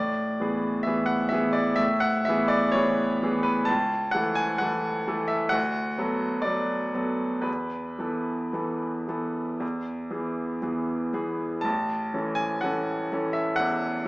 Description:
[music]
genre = classical, romantic nocturne for solo piano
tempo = 54-67 BPM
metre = 4/4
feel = rubato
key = unclear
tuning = A4 = 442 Hz
[part]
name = clear baby grand piano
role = solo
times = 0.0-14.1 s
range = A1 to A5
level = -24 LUFS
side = equal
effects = none
[sound]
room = wet large studio reverb, RT60 1.1 s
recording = heard from further back in the room, small speaker sound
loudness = -24 LUFS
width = side -22 dB against mid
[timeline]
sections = 0.0-14.1 A section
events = none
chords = 0.0 E7/A; 3.7 A/C#; 5.5 D6; 7.5 Esus4; 9.6 E; 11.6 A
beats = 0.88 1.82 2.76 | 3.70 4.61 5.54 6.46 | 7.47 8.55 9.62 10.63 | 11.64 12.63 13.59

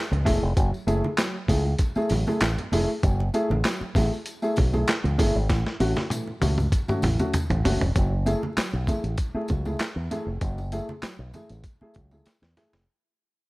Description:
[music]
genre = funk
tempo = 98 BPM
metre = 4/4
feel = straight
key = F# minor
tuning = A4 = 443 Hz
[part]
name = fingered electric bass with an envelope filter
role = bass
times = 0.1-12.8 s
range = E1 to E2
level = -25 LUFS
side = equal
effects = none
[part]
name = breakbeat sampler-style drum kit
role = drums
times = 0.1-12.9 s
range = handclaps, hi-hat, kick drum, snare drum, toms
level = -26 LUFS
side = equal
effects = none
[part]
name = congas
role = percussion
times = 0.1-12.7 s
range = none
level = -35 LUFS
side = right 2 dB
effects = none
[part]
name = dark upright piano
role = stabs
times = 0.2-12.7 s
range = A2 to G#4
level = -28 LUFS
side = equal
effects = none
[part]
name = tambourine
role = percussion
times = 0.3-12.7 s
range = none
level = -47 LUFS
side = left 3 dB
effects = none
[sound]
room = small room ambience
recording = vinyl crackle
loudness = -22 LUFS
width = side -21 dB against mid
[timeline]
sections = 0.0-8.0 A section; 8.0-12.9 B section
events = drum fill 5.5-8.0, 12.3-12.9; fade-out 8.0-12.9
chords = 0.0 F#m9; 5.5 A6; 8.0 F#m9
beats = | 0.57 1.19 1.80 2.42 | 3.03 3.65 4.26 4.88 | 5.50 6.11 6.72 7.34 | 7.95 8.57 9.18 9.80 | 10.41 11.03 11.64 12.26

